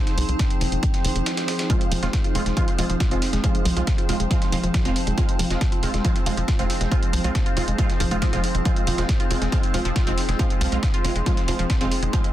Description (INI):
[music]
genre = driving peak-time techno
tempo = 138 BPM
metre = 4/4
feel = straight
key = F minor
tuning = A4 = 440 Hz
[part]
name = overtone-sweeping drone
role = drone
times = 0.0-12.3 s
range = F3 to C4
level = -31 LUFS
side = left 1 dB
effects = chorus, built-in reverb, sidechain pumping
[part]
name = granular cloud pad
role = texture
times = 0.0-12.3 s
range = Eb4 to C5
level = -33 LUFS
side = right 1 dB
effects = built-in reverb, sidechain pumping
[part]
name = dusty soul sampler-style drum kit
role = drums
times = 0.1-12.2 s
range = hi-hat, snare drum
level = -34 LUFS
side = equal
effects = high-pass filter on snare, high-pass filter on hats, high-pass filter on room
[part]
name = electronic hi-hat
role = drums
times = 0.1-12.3 s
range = none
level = -32 LUFS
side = right 1 dB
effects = sidechain pumping on hats
[part]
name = tight sequencer bass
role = bass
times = 0.2-12.1 s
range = F1 to C2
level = -25 LUFS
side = equal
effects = sidechain pumping
[part]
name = electronic kick drum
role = drums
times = 0.4-12.2 s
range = none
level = -22 LUFS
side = equal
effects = none
[part]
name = wide unison pluck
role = riff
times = 1.7-12.2 s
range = F3 to F4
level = -29 LUFS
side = equal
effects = tube saturation, sidechain pumping, digital delay
[part]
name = rave stab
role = stabs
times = 1.7-12.3 s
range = Ab3 to F4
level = -29 LUFS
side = right 3 dB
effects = chorus, built-in reverb, sidechain pumping, dub echo
[sound]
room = little or no reverb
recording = dense, heavily limited modern master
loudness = -20 LUFS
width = side -13 dB against mid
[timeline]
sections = 0.0-12.3 A section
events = none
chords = 0.0 Fm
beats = 0.39 0.83 1.26 | 1.70 2.13 2.57 3.00 | 3.44 3.87 4.31 4.74 | 5.18 5.61 6.05 6.48 | 6.92 7.35 7.79 8.22 | 8.65 9.09 9.52 9.96 | 10.39 10.83 11.26 11.70 | 12.13